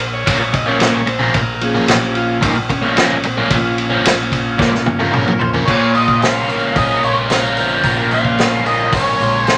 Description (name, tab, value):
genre	psychedelic rock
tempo	111 BPM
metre	4/4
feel	straight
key	Bb minor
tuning	A4 = 440 Hz
part	overdriven combo organ	sustained chords	0.0-5.6 s	F3 to Eb5	-23 LUFS	equal	none
part	growling fingered electric bass	bass	0.0-9.6 s	G1 to Bb1	-26 LUFS	equal	overdrive
part	vintage drum kit	drums	0.0-9.6 s	crash cymbal, hi-hat, kick drum, ride cymbal, snare drum, toms	-20 LUFS	equal	none
part	overdriven electric guitar	riff	0.3-9.6 s	Bb2 to F4	-19 LUFS	equal	phaser
part	octave-fuzz lead guitar	melody	5.1-9.6 s	Bb4 to F5	-20 LUFS	equal	distortion
room	moderate studio reverb, RT60 0.5 s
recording	none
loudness	-15 LUFS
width	mono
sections	0.0-5.7 A section; 5.7-9.6 B section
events	transistor combo organ solo 0.0-5.7; drum fill 4.6-5.7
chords	0.0 Bbm